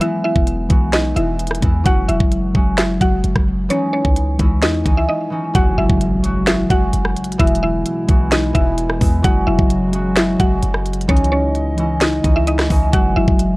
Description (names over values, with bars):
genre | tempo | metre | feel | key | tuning
hip hop, trap | 130 BPM | 4/4 | half-time | unclear | A4 = 443 Hz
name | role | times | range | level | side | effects
mallet-like synth pluck | melody | 0.0-13.6 s | C#4 to F#5 | -21 LUFS | equal | chorus
concert harp | accompaniment | 0.0-13.6 s | E3 to F#4 | -20 LUFS | equal | none
trap drum kit | drums | 0.0-13.5 s | hi-hat, kick drum, rim click, snare drum | -17 LUFS | equal | none
warm 808-style bass | bass | 0.4-13.6 s | E1 to E2 | -20 LUFS | equal | none
dark analog pad | sustained chords | 5.5-13.6 s | B2 to D#5 | -26 LUFS | equal | chorus
impact | sound effects | 5.5-7.4 s | none | -27 LUFS | equal | none
room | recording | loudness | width
little or no reverb | worn, warbling old tape, cassette tape, warbly pitch drift | -14 LUFS | side -21 dB against mid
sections
0.0-5.5 A section; 5.5-13.6 B section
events
break 5.1-5.5; impact 5.5-7.4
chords
0.0 E; 1.9 F#sus2; 3.7 C#madd9; 5.5 F#sus2; 7.4 E; 9.2 F#sus2; 11.1 C#madd9; 12.9 F#sus2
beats
| 0.01 0.47 0.93 1.40 | 1.86 2.32 2.78 3.24 | 3.70 4.16 4.63 5.09 | 5.55 6.01 6.47 6.93 | 7.39 7.86 8.32 8.78 | 9.24 9.70 10.16 10.63 | 11.09 11.55 12.01 12.47 | 12.93 13.39